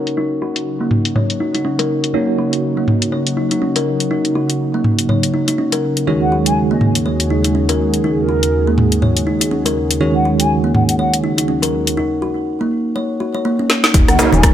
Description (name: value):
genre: afro house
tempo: 122 BPM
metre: 4/4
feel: swing 58% on 16ths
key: Eb minor pentatonic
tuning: A4 = 442 Hz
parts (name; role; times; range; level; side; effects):
- warm analog pad; sustained chords; 0.0-14.5 s; Eb2 to Ab4; -21 LUFS; equal; chorus, sidechain pumping
- bell-like tine electric piano; stabs; 0.0-14.5 s; Eb3 to Db5; -21 LUFS; right 4 dB; medium stereo tremolo, sidechain pumping, low-pass filter, digital delay
- afro-pop drum kit; drums; 0.1-14.5 s; cabasa, hi-hat, rim click, snare drum, toms; -16 LUFS; equal; low-pass filter on perc, low-pass filter on hats, low-pass filter on snare, low-pass filter on toms
- kalimba; arpeggios; 0.2-14.1 s; Bb3 to Db5; -19 LUFS; left 1 dB; sidechain pumping, low-pass filter, digital delay
- mellow hollow bansuri; melody; 6.2-14.4 s; Bb4 to Ab5; -21 LUFS; equal; digital delay
- smooth synth bass; bass; 13.9-14.5 s; Eb1; -17 LUFS; equal; sidechain pumping
- electronic kick drum; drums; 13.9-14.5 s; none; -12 LUFS; equal; overdrive
- congas; percussion; 13.9-14.5 s; none; -20 LUFS; left 2 dB; none
- impact; sound effects; 13.9-14.5 s; none; -20 LUFS; equal; none
- djembe; percussion; 14.1-14.5 s; none; -18 LUFS; right 2 dB; none
room: light reverb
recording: none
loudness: -14 LUFS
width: side -10 dB against mid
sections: 0.0-13.9 A section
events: filter sweep on drum 0.0-13.9; filter sweep on tine electric piano 0.0-13.9; break 12.0-13.9; drum fill 13.7; impact 13.9-14.5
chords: 0.0 Ebm7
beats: | 0.17 0.66 1.16 1.65 | 2.14 2.63 3.12 3.61 | 4.11 4.60 5.09 5.58 | 6.07 6.57 7.06 7.55 | 8.04 8.53 9.02 9.52 | 10.01 10.50 10.99 11.48 | 11.97 12.47 12.96 13.45 | 13.94 14.43